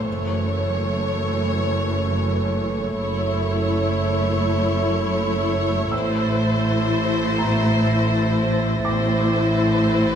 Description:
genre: cinematic, suspense film score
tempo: 82 BPM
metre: 4/4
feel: straight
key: unclear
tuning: A4 = 440 Hz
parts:
  - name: rich studio violin section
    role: melody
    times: 0.0-10.2 s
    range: C5 to C#5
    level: -27 LUFS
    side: left 1 dB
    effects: none
  - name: rich studio viola section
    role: accompaniment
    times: 0.0-10.2 s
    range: E3 to E4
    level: -24 LUFS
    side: left 2 dB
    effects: none
  - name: glass harmonica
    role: sustained chords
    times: 0.0-10.2 s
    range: E4 to E5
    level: -27 LUFS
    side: right 2 dB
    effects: none
  - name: clear studio cello section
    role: bass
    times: 0.0-10.2 s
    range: F#2 to A2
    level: -26 LUFS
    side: right 1 dB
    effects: none
  - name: rich studio double bass section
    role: bass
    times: 0.0-10.2 s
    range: F#1 to A1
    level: -25 LUFS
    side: right 2 dB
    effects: none
  - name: felt-muted upright piano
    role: texture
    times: 0.0-10.2 s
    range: F5 to F6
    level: -33 LUFS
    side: equal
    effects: none
  - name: rich studio violin section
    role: texture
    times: 5.9-10.2 s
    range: A6 to Bb6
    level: -32 LUFS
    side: right 1 dB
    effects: none
room: wet recital hall reverb, RT60 1.4 s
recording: none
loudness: -19 LUFS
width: side -8 dB against mid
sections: 0.0-10.2 A section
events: none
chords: 0.1 F#m7; 5.9 Am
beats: | 0.07 0.80 1.53 2.26 | 3.00 3.73 4.46 5.19 | 5.92 6.65 7.38 8.12 | 8.85 9.58

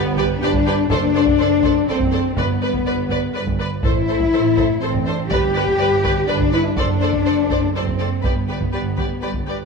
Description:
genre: cinematic, epic orchestral film score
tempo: 123 BPM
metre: 3/4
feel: straight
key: unclear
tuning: A4 = 441 Hz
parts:
  - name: warm French horn section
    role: sustained chords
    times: 0.0-9.4 s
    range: B3 to G4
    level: -21 LUFS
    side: left 8 dB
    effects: none
  - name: rich symphonic double bass section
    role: bass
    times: 0.0-9.7 s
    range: F#1 to A1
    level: -23 LUFS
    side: right 4 dB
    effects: none
  - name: warm symphonic cello section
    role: bass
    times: 0.0-9.5 s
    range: B3 to G4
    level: -25 LUFS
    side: right 1 dB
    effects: none
  - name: warm symphonic violin section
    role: melody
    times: 0.2-9.6 s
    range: C5 to D5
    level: -31 LUFS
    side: left 2 dB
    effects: none
  - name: clear symphonic violin section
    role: second line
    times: 0.2-9.6 s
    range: B4 to C5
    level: -28 LUFS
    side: right 1 dB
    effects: none
  - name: rich symphonic viola section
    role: accompaniment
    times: 0.2-9.5 s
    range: G4 to B4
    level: -28 LUFS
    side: right 2 dB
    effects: none
  - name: taiko ensemble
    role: drums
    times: 0.2-9.7 s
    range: none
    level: -25 LUFS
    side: equal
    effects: none
room: moderate recital hall reverb, RT60 1.4 s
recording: none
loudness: -16 LUFS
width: side -4 dB against mid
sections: 0.0-9.7 A section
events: none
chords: 0.0 G; 0.9 D7/F#; 2.4 G; 3.8 Am; 5.3 G; 6.8 D7/F#; 8.2 G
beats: 0.42 | 0.91 1.40 1.88 | 2.37 2.86 3.35 | 3.84 4.33 4.82 | 5.31 5.80 6.29 | 6.78 7.26 7.75 | 8.24 8.73 9.22

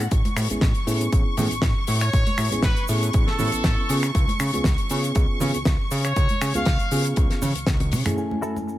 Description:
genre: nu-disco, nu disco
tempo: 119 BPM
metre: 4/4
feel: straight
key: unclear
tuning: A4 = 439 Hz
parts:
  - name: mellow reed electric piano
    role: accompaniment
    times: 0.0-8.8 s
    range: F#2 to G#5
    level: -29 LUFS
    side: equal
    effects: fast tremolo, low-pass filter, tape echo
  - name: rich symphonic string section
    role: sustained chords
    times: 0.0-8.8 s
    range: A4 to C#6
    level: -31 LUFS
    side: left 1 dB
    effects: sidechain pumping, low-pass filter
  - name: fat analog bass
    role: bass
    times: 0.0-8.0 s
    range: A1 to C#3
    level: -25 LUFS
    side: equal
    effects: sidechain pumping
  - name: damped 70s drum kit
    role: drums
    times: 0.0-8.2 s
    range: finger snaps, hi-hat, shaker, snare drum, toms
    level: -27 LUFS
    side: left 1 dB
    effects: small room reverb
  - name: cabasa and congas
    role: percussion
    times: 0.0-8.8 s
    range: none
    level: -33 LUFS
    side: right 3 dB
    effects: none
  - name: electronic kick drum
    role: drums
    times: 0.1-7.8 s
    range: none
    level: -22 LUFS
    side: equal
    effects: small room reverb
  - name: brilliant trumpet section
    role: melody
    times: 2.0-7.1 s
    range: A4 to E#5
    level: -29 LUFS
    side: equal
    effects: dub echo
  - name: direct-recorded clean electric guitar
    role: riff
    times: 8.4-8.7 s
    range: E4 to A4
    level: -32 LUFS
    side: left 2 dB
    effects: wide subtle chorus, low-pass filter, tape echo
room: little or no reverb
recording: none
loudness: -19 LUFS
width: side -14 dB against mid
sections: 0.0-8.2 A section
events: drum fill 7.7-8.2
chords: 0.0 Amaj7; 3.9 C#7; 8.2 F#m7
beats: | 0.11 0.62 1.12 1.63 | 2.13 2.63 3.14 3.64 | 4.15 4.65 5.16 5.66 | 6.16 6.67 7.17 7.68 | 8.18 8.69

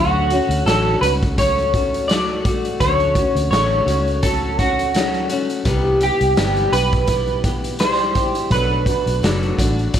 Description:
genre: indie pop, bedroom pop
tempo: 84 BPM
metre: 4/4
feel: swing 55% on 16ths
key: D major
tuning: A4 = 440 Hz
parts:
  - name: electric guitar through a small old amp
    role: melody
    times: 0.0-10.0 s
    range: F#4 to D5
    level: -19 LUFS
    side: right 1 dB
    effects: analog chorus, slapback echo
  - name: fingerpicked steel-string acoustic guitar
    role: accompaniment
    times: 0.0-10.0 s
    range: B2 to G4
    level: -22 LUFS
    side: left 3 dB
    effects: lush chorus, vibrato effect
  - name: vintage muted fingered electric bass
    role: bass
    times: 0.0-9.9 s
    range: F#1 to D2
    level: -22 LUFS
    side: equal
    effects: none
  - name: raw garage drum kit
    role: drums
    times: 0.3-10.0 s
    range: hi-hat, kick drum, snare drum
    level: -22 LUFS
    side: equal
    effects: none
room: small room ambience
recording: none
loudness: -16 LUFS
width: side -9 dB against mid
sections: 0.0-10.0 A section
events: none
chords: 0.0 Dmaj7; 5.7 Cmaj7; 8.5 Bm7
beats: 0.67 1.38 2.10 | 2.81 3.52 4.24 4.95 | 5.66 6.38 7.09 7.80 | 8.52 9.23 9.94

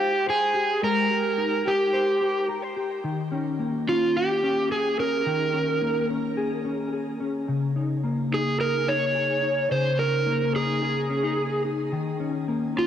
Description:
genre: dream pop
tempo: 108 BPM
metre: 4/4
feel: straight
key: unclear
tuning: A4 = 439 Hz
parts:
  - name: overdriven slide guitar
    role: melody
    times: 0.0-12.9 s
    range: F4 to Db5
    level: -24 LUFS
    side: right 1 dB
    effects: tape echo
  - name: mellow electric guitar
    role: arpeggios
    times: 0.0-12.9 s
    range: Db3 to C5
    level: -27 LUFS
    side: left 2 dB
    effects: ensemble chorus, tape echo
room: moderate shimmer reverb, RT60 4.7 s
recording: dry, gritty hardware recording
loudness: -22 LUFS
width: side -9 dB against mid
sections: 0.0-12.9 A section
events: none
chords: 0.0 Abmaj9; 3.0 Eb7sus4; 7.5 Dbsus2; 11.9 Eb7(no3)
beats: 0.26 | 0.82 1.37 1.93 2.48 | 3.04 3.60 4.15 4.71 | 5.26 5.82 6.37 6.93 | 7.49 8.04 8.60 9.15 | 9.71 10.26 10.82 11.37 | 11.93 12.48

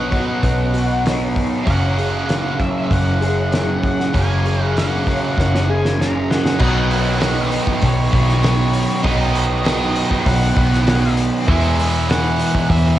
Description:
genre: rock, shoegaze and dream pop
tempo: 98 BPM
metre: 4/4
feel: straight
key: B major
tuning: A4 = 439 Hz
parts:
  - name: octave-fuzz lead guitar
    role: melody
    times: 0.0-13.0 s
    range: C#5 to A#5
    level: -26 LUFS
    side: left 1 dB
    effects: distortion, cassette tape, analog delay
  - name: picked twelve-string acoustic guitar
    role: arpeggios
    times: 0.0-6.6 s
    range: D#3 to G#4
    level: -26 LUFS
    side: left 4 dB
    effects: ensemble chorus, cassette tape, analog delay
  - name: biting overdriven guitar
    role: riff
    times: 0.0-13.0 s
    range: F#2 to E4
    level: -21 LUFS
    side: right 7 dB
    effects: reverse reverb, cassette tape
  - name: thick fuzz guitar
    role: riff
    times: 0.0-13.0 s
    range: E2 to B3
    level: -23 LUFS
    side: left 5 dB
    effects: distortion, analog chorus, cassette tape
  - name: vintage muted picked electric bass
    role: bass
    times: 0.0-12.9 s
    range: F#1 to E2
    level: -20 LUFS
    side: equal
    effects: transformer saturation
  - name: loose indie drum kit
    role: drums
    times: 0.1-12.8 s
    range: crash cymbal, hi-hat, kick drum, snare drum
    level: -22 LUFS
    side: equal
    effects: cassette tape
  - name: overdriven electric guitar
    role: riff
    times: 6.6-13.0 s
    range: E2 to B3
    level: -24 LUFS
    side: equal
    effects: cassette tape
room: little or no reverb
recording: home recording on cassette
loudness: -15 LUFS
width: side -13 dB against mid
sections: 0.0-6.6 A section; 6.6-13.0 B section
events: drum fill 5.4-6.6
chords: 0.0 Badd9; 1.7 F#add9; 6.6 Badd9; 11.5 E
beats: 0.43 1.05 | 1.67 2.29 2.90 3.52 | 4.14 4.75 5.37 5.98 | 6.60 7.21 7.82 8.43 | 9.04 9.65 10.26 10.87 | 11.48 12.09 12.70

